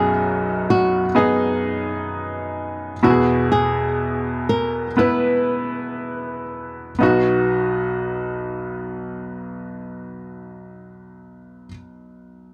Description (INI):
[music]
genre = pop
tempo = 57-66 BPM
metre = 4/4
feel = straight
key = B major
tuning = A4 = 439 Hz
[part]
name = flamenco guitar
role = melody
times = 0.0-11.7 s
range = D#4 to B4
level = -24 LUFS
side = equal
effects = tape echo
[part]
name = bright upright piano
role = accompaniment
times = 0.0-12.5 s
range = B1 to B4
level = -23 LUFS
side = equal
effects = none
[sound]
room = small room ambience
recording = dry, close 1970s-style studio recording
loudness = -21 LUFS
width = mono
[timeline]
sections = 0.0-7.0 A section; 7.0-11.2 B section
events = slowing down 0.0-7.0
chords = 0.0 B; 3.0 E; 7.0 B